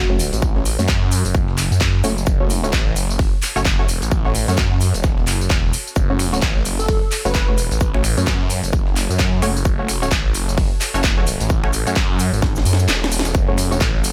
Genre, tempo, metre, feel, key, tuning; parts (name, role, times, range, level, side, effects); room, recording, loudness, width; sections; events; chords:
bass house; 130 BPM; 4/4; swing 59% on 16ths; F# minor; A4 = 437 Hz
glassy wavetable pluck; melody; 0.0-0.2, 6.8-7.9 s; F#4 to B4; -31 LUFS; equal; chorus, tape echo
phased detuned saw bass; bass; 0.0-14.1 s; E1 to F#2; -22 LUFS; equal; phaser, tube saturation, sidechain pumping
airy breathy pad; texture; 3.4-14.1 s; F#4 to A5; -41 LUFS; equal
band-passed chord stab; stabs; 0.1-13.8 s; A3 to C#5; -28 LUFS; equal; chorus, sidechain pumping, tape echo
breakbeat sampler-style drum kit; drums; 0.2-14.1 s; hi-hat, shaker, snare drum; -36 LUFS; equal
house drum kit; drums; 0.2-14.1 s; finger snaps, handclaps, hi-hat, snare drum, tambourine; -25 LUFS; equal; studio reverb
electronic kick drum; drums; 0.4-13.9 s; -21 LUFS; equal; overdrive, studio reverb
little or no reverb; -18 LUFS; mono
0.0-14.1 A section
filter sweep on synth stab 0.0-14.1; drum fill 12.4-13.3; kick drops out 12.9-13.3
0.0 F#m